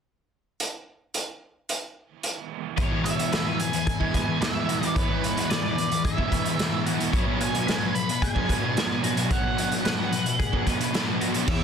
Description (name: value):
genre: rock, shoegaze and dream pop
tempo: 110 BPM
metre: 4/4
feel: straight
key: E mixolydian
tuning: A4 = 442 Hz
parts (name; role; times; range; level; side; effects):
- raw garage drum kit; drums; 0.6-11.6 s; crash cymbal, hi-hat, kick drum, snare drum; -27 LUFS; equal; none
- twelve-string electric guitar; arpeggios; 2.8-11.6 s; F#4 to C#5; -36 LUFS; left 9 dB; wide subtle chorus, digital delay
- crunchy overdriven guitar; riff; 2.8-11.6 s; B2 to G#4; -29 LUFS; right 13 dB; reverse reverb
- thick fuzz guitar; riff; 2.8-11.6 s; E2 to B3; -28 LUFS; left 10 dB; distortion, lush chorus
- octave-fuzz lead guitar; melody; 3.0-11.6 s; B4 to B5; -30 LUFS; right 5 dB; distortion, digital delay
- fuzz fingered electric bass; bass; 11.5-11.6 s; E2; -28 LUFS; left 1 dB; overdrive
room: studio reverb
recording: dense, heavily limited modern master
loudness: -23 LUFS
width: side -7 dB against mid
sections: 0.6-2.8 A section; 2.8-11.5 B section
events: none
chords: 0.6 N.C.; 2.8 E; 7.1 Bm6